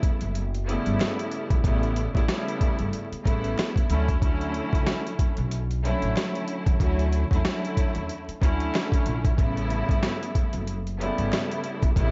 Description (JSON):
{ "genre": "hip hop, boom-bap hip-hop", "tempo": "93 BPM", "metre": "4/4", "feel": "swing 58% on 16ths", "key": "D major", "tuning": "A4 = 440 Hz", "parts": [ { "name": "rich studio string section", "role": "accompaniment", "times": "0.0-12.1 s", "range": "C#3 to E4", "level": "-31 LUFS", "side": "equal", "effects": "cassette tape, high-pass filter, low-pass filter" }, { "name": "boom bap sampler-style drum kit", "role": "drums", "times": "0.0-12.1 s", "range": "hi-hat, kick drum, rim click, snare drum", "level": "-27 LUFS", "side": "equal", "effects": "none" }, { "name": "upright bass", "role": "bass", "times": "0.2-12.1 s", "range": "F#1 to E2", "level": "-30 LUFS", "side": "equal", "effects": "none" }, { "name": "finger snaps", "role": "percussion", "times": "1.0-11.5 s", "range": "none", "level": "-45 LUFS", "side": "equal", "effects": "none" } ], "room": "studio reverb", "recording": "dark, warm production, vinyl crackle, nothing above 7.7 kHz", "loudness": "-26 LUFS", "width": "mono", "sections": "0.0-12.1 A section", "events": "none", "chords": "0.0 A7; 3.9 Dmaj7; 9.4 A7", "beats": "0.35 0.99 | 1.64 2.29 2.93 3.58 | 4.22 4.87 5.51 6.16 | 6.80 7.45 8.09 8.74 | 9.38 10.03 10.67 11.32 | 11.96" }